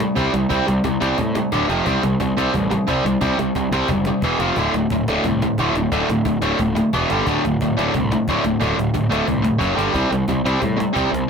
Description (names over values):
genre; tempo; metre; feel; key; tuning
punk rock; 178 BPM; 4/4; straight; unclear; A4 = 441 Hz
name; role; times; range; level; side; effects
distorted electric guitar; riff; 0.0-11.3 s; D2 to C4; -18 LUFS; equal; overdrive
fuzz picked electric bass; bass; 0.0-11.2 s; D1 to A2; -24 LUFS; equal; overdrive
cajon; drums; 0.0-11.2 s; none; -30 LUFS; equal; none
room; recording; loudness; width
light reverb; none; -17 LUFS; side -6 dB against mid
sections
0.0-11.3 A section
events
none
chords
0.0 C5; 1.5 D5; 1.7 F5; 1.9 C5; 4.2 E5; 4.4 F5; 4.6 D5; 6.9 E5; 7.1 G5; 7.3 D5; 9.6 F#5; 9.8 G5; 9.9 C5